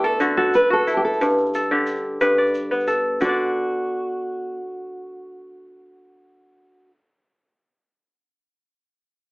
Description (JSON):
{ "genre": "west african traditional, West African string and xylophone music", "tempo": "120 BPM (dotted quarters)", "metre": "12/8", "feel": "straight", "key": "D major", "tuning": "A4 = 438 Hz", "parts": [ { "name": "fingerpicked steel-string acoustic guitar", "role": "melody", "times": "0.0-6.9 s", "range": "F#4 to B4", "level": "-22 LUFS", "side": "equal", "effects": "none" }, { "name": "kora", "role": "arpeggios", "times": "0.0-7.0 s", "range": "G2 to D5", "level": "-20 LUFS", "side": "equal", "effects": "none" }, { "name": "tube shaker", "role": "percussion", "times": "0.2-3.4 s", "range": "none", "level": "-48 LUFS", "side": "right 2 dB", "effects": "none" } ], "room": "light reverb", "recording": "telephone sound", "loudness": "-18 LUFS", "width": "side -27 dB against mid", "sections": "0.0-3.2 A section; 3.2-7.2 B section", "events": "none", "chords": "0.0 D; 1.2 G; 3.2 D", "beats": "0.21 0.70 | 1.20 1.70 2.20 2.70 | 3.20 3.70 4.20 4.70 | 5.20 5.70 6.20 6.70" }